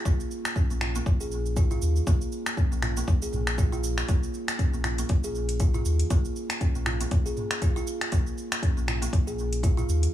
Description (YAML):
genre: afro house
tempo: 119 BPM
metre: 4/4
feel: swing 57% on 16ths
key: Bb minor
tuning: A4 = 440 Hz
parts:
  - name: kalimba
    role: arpeggios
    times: 0.1-9.9 s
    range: Bb3 to Ab4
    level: -32 LUFS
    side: right 2 dB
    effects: sidechain pumping, dub echo
  - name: warm sub bass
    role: bass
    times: 0.1-10.1 s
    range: Bb1 to Eb2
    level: -28 LUFS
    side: left 1 dB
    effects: sidechain pumping
  - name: afro-pop drum kit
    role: drums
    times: 0.1-10.1 s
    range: finger snaps, hi-hat, shaker, toms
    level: -32 LUFS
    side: equal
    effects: none
  - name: electronic kick drum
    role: drums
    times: 0.1-9.7 s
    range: none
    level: -24 LUFS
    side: equal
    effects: none
room: little or no reverb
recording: none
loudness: -24 LUFS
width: side -12 dB against mid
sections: 0.0-10.1 A section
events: none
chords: 0.0 Bb5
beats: | 0.05 0.56 1.06 1.57 | 2.07 2.58 3.08 3.58 | 4.09 4.59 5.10 5.60 | 6.11 6.61 7.11 7.62 | 8.12 8.63 9.13 9.63